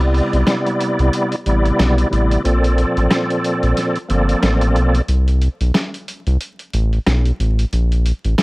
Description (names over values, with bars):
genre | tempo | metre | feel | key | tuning
hip hop, boom-bap hip-hop | 91 BPM | 4/4 | swing 57% on 16ths | C major | A4 = 440 Hz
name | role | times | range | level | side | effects
bright tonewheel organ | accompaniment | 0.0-5.0 s | Bb2 to D5 | -18 LUFS | equal | chorus vibrato, fast rotary speaker, high-pass filter, low-pass filter
round analog bass | bass | 0.0-8.4 s | G1 to C2 | -15 LUFS | equal | none
boom bap sampler-style drum kit | drums | 0.0-8.4 s | hi-hat, rim click, snare drum | -22 LUFS | equal | none
room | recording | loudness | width
little or no reverb | worn, warbling old tape, cassette tape, vinyl crackle, warbly pitch drift | -15 LUFS | side -22 dB against mid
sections
0.0-8.4 A section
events
break 0.0-8.4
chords
0.0 Cmaj9; 2.4 Bbmaj9; 5.1 Amadd9; 7.7 Gmadd9 (rootless)